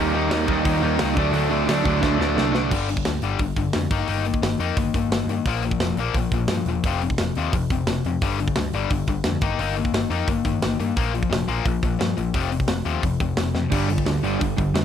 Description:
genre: punk rock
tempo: 174 BPM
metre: 4/4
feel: straight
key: G minor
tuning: A4 = 439 Hz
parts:
  - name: distorted electric guitar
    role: riff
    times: 0.0-14.8 s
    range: F2 to Eb4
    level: -24 LUFS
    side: left 9 dB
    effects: overdrive
  - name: fuzz guitar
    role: riff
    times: 0.0-2.6 s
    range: D3 to Eb4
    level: -26 LUFS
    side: equal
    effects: distortion
  - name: overdriven semi-hollow guitar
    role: riff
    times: 0.0-2.7, 13.7-14.8 s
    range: G2 to Eb4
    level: -24 LUFS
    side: right 10 dB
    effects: none
  - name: overdriven picked electric bass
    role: bass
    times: 0.0-14.8 s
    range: E1 to G2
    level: -26 LUFS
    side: right 1 dB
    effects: none
  - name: tight metal drum kit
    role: drums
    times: 0.3-14.8 s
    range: crash cymbal, hi-hat, kick drum, snare drum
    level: -26 LUFS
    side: right 1 dB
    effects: none
room: little or no reverb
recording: none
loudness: -20 LUFS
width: side -9 dB against mid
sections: 0.0-2.7 A section; 2.7-14.8 B section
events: drum fill 2.0-2.7, 13.5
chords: 0.0 Eb; 1.2 D; 2.7 G5; 3.9 Eb/G; 5.5 Bb5; 6.8 F5; 8.2 G5; 9.4 Eb/G; 11.0 Bb5; 12.3 F5; 13.7 G5

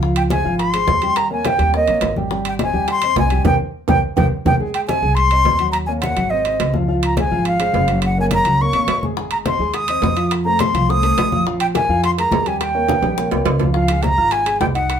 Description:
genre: latin, salsa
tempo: 210 BPM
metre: 4/4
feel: straight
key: unclear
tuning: A4 = 440 Hz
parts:
  - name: dark upright piano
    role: accompaniment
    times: 0.0-15.0 s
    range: F3 to F6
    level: -22 LUFS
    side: equal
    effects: none
  - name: upright bass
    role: bass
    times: 0.0-15.0 s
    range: Gb1 to F2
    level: -22 LUFS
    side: equal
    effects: none
  - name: bongos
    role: percussion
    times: 0.0-4.5, 9.2-15.0 s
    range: none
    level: -28 LUFS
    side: left 5 dB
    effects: none
  - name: congas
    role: percussion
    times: 0.0-15.0 s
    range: none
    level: -24 LUFS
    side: left 1 dB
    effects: none
  - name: silver concert flute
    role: melody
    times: 0.2-15.0 s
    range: Eb5 to Eb6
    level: -18 LUFS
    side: equal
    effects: none
  - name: timbales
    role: percussion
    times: 0.2-15.0 s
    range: none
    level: -26 LUFS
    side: right 6 dB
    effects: none
room: moderate studio reverb, RT60 0.6 s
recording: band playing live in one room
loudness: -15 LUFS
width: side -8 dB against mid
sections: 0.0-4.6 A section; 4.6-13.8 A section; 13.8-15.0 B section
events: band accent 3.5-4.6; drum fill 3.7-4.6, 12.9-13.8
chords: 0.0 Dbmaj7; 1.2 Eb7; 2.3 Abmaj7; 3.5 C5; 4.6 Ab7; 5.7 Ebm7; 6.3 Ab; 6.9 Dbmaj7; 8.0 Gbadd9; 9.2 Ab; 10.3 F7; 11.5 Bb5; 12.6 Eb7; 13.8 Dbmaj7

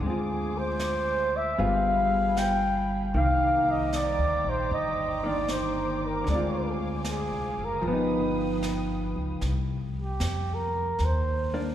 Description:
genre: jazz ballad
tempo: 76 BPM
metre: 4/4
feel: swing 69% on 8ths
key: C minor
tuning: A4 = 441 Hz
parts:
  - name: mellow flugelhorn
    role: melody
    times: 0.0-11.6 s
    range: G4 to G5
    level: -28 LUFS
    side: equal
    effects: none
  - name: vintage hollow-body jazz guitar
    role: accompaniment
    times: 0.0-11.7 s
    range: D3 to Ab4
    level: -30 LUFS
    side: left 1 dB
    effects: none
  - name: muted studio string section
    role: sustained chords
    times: 0.0-9.4 s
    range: F4 to D#6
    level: -38 LUFS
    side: equal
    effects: none
  - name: upright bass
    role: bass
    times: 0.0-11.7 s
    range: F#1 to F2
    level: -31 LUFS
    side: equal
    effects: none
  - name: jazz brush drum kit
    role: drums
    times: 0.0-11.7 s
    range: brushed snare drum, hi-hat, snare drum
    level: -40 LUFS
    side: right 1 dB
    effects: none
room: wet church reverb, RT60 3.3 s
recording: recorded in a church or concert hall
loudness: -24 LUFS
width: side -11 dB against mid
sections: 0.0-9.4 A section; 9.4-11.7 B section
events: flugelhorn solo 9.4-11.7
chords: 0.0 Dm7b5; 1.6 G7b9; 3.1 Cm9; 6.3 Dm7b5; 7.8 Gaug7; 9.4 Cm7

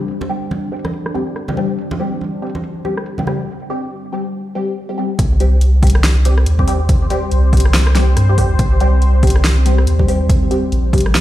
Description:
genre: deep dubstep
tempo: 141 BPM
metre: 4/4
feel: swing 59% on 16ths, half-time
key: C minor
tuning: A4 = 440 Hz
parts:
  - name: deep dark ambient pad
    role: sustained chords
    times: 0.0-11.2 s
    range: G3 to C5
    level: -25 LUFS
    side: equal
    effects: chorus, built-in reverb
  - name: deep house drum kit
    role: drums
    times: 0.1-11.2 s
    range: hi-hat, rim click, snare drum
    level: -21 LUFS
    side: equal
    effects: overdrive, low-pass filter on hats, low-pass filter on snare
  - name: congas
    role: percussion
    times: 0.2-3.4 s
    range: none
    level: -25 LUFS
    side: right 2 dB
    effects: dub echo
  - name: filtered dub chord stab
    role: stabs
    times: 0.3-11.0 s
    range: G3 to G4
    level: -22 LUFS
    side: left 2 dB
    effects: phaser, ensemble chorus, dub echo
  - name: soft dub sub bass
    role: bass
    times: 5.2-11.2 s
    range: Bb1 to G2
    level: -13 LUFS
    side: equal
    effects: none
  - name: electronic kick drum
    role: drums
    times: 5.2-11.0 s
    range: none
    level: -16 LUFS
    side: equal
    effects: overdrive
room: light reverb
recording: played on a big sound system in a bare room, large studio reverb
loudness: -13 LUFS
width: side -14 dB against mid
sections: 0.0-5.2 A section; 5.2-11.2 B section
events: drop 5.2-11.2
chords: 0.0 C5

